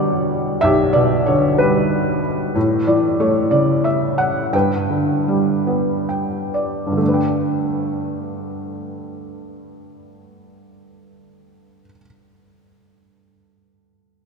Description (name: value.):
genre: classical, lyrical solo piano.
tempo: 42-63 BPM (dotted quarters).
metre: 6/8.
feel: rubato.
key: G lydian.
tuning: A4 = 440 Hz.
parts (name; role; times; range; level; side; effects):
felt-muted upright piano; solo; 0.0-14.3 s; B1 to G5; -16 LUFS; equal; none.
room: wet cathedral reverb, RT60 5.1 s.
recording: recorded in a church or concert hall.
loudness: -16 LUFS.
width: side -5 dB against mid.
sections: 0.0-7.0 A section; 7.0-12.5 B section.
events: slowing down 2.6-7.0; felt piano fill 5.7-7.0.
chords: 0.0 Em7; 2.6 A; 4.5 G; 7.0 Gadd9.